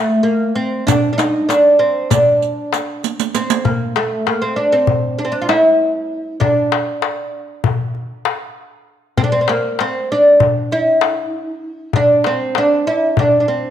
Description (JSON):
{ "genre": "Turkish makam ensemble", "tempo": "195 BPM (eighths)", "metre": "9/8", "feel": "straight", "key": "D makam ussak from 3.6 s", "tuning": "A4 = 438 Hz", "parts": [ { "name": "oud", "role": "melody", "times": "0.0-13.7 s", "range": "A3 to F4", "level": "-14 LUFS", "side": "right 1 dB", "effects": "none" }, { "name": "darbuka", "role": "percussion", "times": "0.9-13.6 s", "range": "none", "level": "-19 LUFS", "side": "left 6 dB", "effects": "none" }, { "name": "riq", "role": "percussion", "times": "0.9-3.6 s", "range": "none", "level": "-20 LUFS", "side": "right 12 dB", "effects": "none" } ], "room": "wet echo chamber reverb, RT60 1.4 s, small room ambience", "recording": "1960s-style stereo with parts hard left and right", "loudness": "-13 LUFS", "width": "side -10 dB against mid", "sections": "0.0-3.6 A section; 3.6-13.7 B section", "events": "drum fill 3.0-3.6", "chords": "none" }